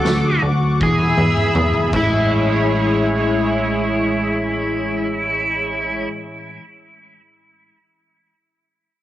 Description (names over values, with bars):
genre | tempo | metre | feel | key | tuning
dream pop | 80 BPM | 4/4 | straight | A major | A4 = 438 Hz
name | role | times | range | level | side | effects
overdriven slide guitar | melody | 0.0-6.1 s | E4 to A4 | -21 LUFS | right 1 dB | cassette tape, analog delay
lush unison pad | sustained chords | 0.0-6.1 s | G#3 to E6 | -21 LUFS | equal | chorus, phaser
clean electric guitar | arpeggios | 0.0-6.7 s | A2 to E4 | -25 LUFS | left 1 dB | lush chorus, analog delay
plucky analog bass | bass | 0.0-6.1 s | A1 to E2 | -22 LUFS | equal | none
oversized low-tuned drum kit | drums | 0.1-2.1 s | crash cymbal, kick drum, snare drum, tambourine, toms | -24 LUFS | equal | cassette tape
room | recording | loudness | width
moderate studio reverb, RT60 0.5 s | home recording on cassette | -16 LUFS | side -13 dB against mid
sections
0.0-2.3 A section; 2.3-5.3 B section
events
drum fill 0.8-2.3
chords
0.0 Dmaj7; 0.8 E; 1.9 Amaj7